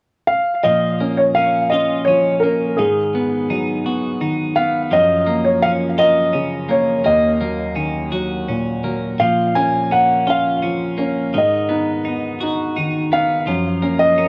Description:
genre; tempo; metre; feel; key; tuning
six-eight pop ballad; 56 BPM (dotted quarters); 6/8; straight; unclear; A4 = 439 Hz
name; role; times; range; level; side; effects
warm baby grand piano; melody; 0.3-14.3 s; G#4 to G#5; -19 LUFS; equal; cassette tape, tape echo
twelve-string electric guitar; arpeggios; 0.6-14.3 s; D#3 to F#4; -26 LUFS; equal; cassette tape
warm baby grand piano; accompaniment; 0.7-14.3 s; D#2 to D#4; -24 LUFS; equal; cassette tape
room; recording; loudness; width
wet small room reverb, RT60 0.5 s; home recording on cassette; -18 LUFS; mono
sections
0.7-14.3 A section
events
none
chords
0.0 N.C.; 0.7 A#m; 2.8 G#m7; 4.9 F#maj7; 7.1 D#m7; 9.2 A#m; 11.3 G#m7; 13.5 F#maj7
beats
| 0.65 1.73 | 2.79 3.86 | 4.92 5.99 | 7.05 8.12 | 9.20 10.27 | 11.34 12.41 | 13.47

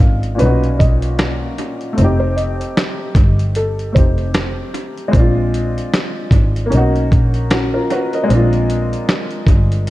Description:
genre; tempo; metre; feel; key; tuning
lo-fi hip hop; 76 BPM; 4/4; swing 58% on 16ths; unclear; A4 = 440 Hz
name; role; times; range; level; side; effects
felt-muted upright piano; melody; 0.0-5.1 s; A4 to F5; -24 LUFS; equal; low-pass filter, analog delay
felt-muted upright piano; accompaniment; 0.0-9.9 s; A#2 to D#5; -20 LUFS; left 1 dB; low-pass filter
rich double bass; bass; 0.0-9.9 s; F1 to B1; -16 LUFS; equal; none
dusty soul sampler-style drum kit; drums; 0.2-9.9 s; hi-hat, kick drum, snare drum; -15 LUFS; equal; analog delay
room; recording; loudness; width
small room reverb; echo-heavy mix, cassette tape; -13 LUFS; side -16 dB against mid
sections
0.0-9.9 A section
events
none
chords
0.4 Bmaj7; 2.0 F7; 5.1 Bb7; 6.7 Bmaj7; 8.3 Bb7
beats
0.39 1.18 | 1.97 2.76 3.55 4.34 | 5.13 5.92 6.71 7.50 | 8.29 9.07 9.86

